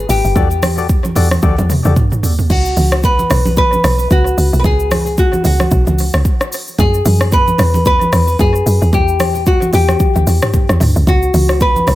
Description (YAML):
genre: amapiano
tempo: 112 BPM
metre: 4/4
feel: swing 58% on 16ths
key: C# minor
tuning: A4 = 440 Hz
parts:
  - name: nylon-string guitar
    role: melody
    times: 0.0-11.9 s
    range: F#4 to B4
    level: -16 LUFS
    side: left 1 dB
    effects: tape echo
  - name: woody log drum bass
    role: bass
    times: 0.0-11.9 s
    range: F#1 to F#2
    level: -14 LUFS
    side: equal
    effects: none
  - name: deep house drum kit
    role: drums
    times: 0.1-11.9 s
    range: crash cymbal, hi-hat, kick drum, rim click, shaker, toms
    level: -15 LUFS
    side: equal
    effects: none
  - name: percussive organ stab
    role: stabs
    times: 0.4-1.9 s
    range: F#4 to D5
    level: -22 LUFS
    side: left 7 dB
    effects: chorus, tape echo
  - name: congas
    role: percussion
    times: 0.4-11.9 s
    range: none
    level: -22 LUFS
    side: right 2 dB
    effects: tape echo
room: little or no reverb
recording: echo-heavy mix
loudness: -10 LUFS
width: side -16 dB against mid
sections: 0.0-2.5 A section; 2.5-11.9 A section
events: drop 0.0-2.5, 2.5-11.9; drum fill 1.4-2.5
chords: 0.4 Em11; 2.5 C#7sus4; 6.8 F#9sus4; 8.9 Em; 11.1 C#7sus4